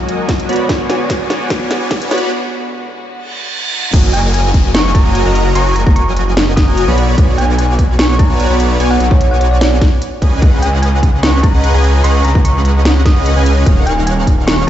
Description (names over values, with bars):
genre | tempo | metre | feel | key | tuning
future bass | 148 BPM | 4/4 | swing 53% on 16ths, half-time | F# major | A4 = 436 Hz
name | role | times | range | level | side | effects
clear studio string section | sustained chords | 0.0-3.9 s | D3 to F#4 | -28 LUFS | left 2 dB | sidechain pumping
supersaw chords | riff | 0.0-14.7 s | F#3 to B5 | -18 LUFS | equal | analog chorus, sidechain pumping, low-pass filter
riser, reverse cymbal and downlifter | sound effects | 0.0-7.2 s | none | -24 LUFS | right 2 dB | none
trap drum kit | drums | 0.1-14.6 s | crash cymbal, hi-hat, snare drum | -19 LUFS | equal | studio reverb
electronic kick drum | drums | 0.3-14.4 s | none | -11 LUFS | equal | studio reverb
wide detuned saw bass | bass | 3.9-14.7 s | D#1 to C#2 | -13 LUFS | equal | chorus, sidechain pumping
thumb-piano-like synth pluck | melody | 4.1-14.7 s | C#5 to D#6 | -20 LUFS | equal | chorus, sidechain pumping, dub echo
room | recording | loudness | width
light reverb | played on a big sound system in a bare room, stone room reverb, high-pass filter, nothing above 7.9 kHz | -10 LUFS | side -11 dB against mid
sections
0.0-3.9 A section; 3.9-14.7 B section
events
build-up 0.0-3.9; drum fill 0.0-2.3; riser 0.0-2.3; filter sweep on supersaw synth 0.0-3.9; filter sweep on string section 0.0-3.9; filter sweep 0.0-3.9; break 2.3-3.9; reverse cymbal 3.3-3.9; drop 3.9-14.7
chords
0.5 Bm6; 3.7 F#69; 7.0 Bm6; 10.2 C#7sus4; 13.7 D#m9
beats
0.29 | 0.69 1.10 1.50 1.91 | 2.31 2.72 3.12 3.53 | 3.94 4.34 4.75 5.15 | 5.56 5.96 6.37 6.77 | 7.18 7.58 7.99 8.39 | 8.80 9.21 9.61 10.02 | 10.42 10.83 11.23 11.64 | 12.04 12.45 12.85 13.26 | 13.66 14.07 14.48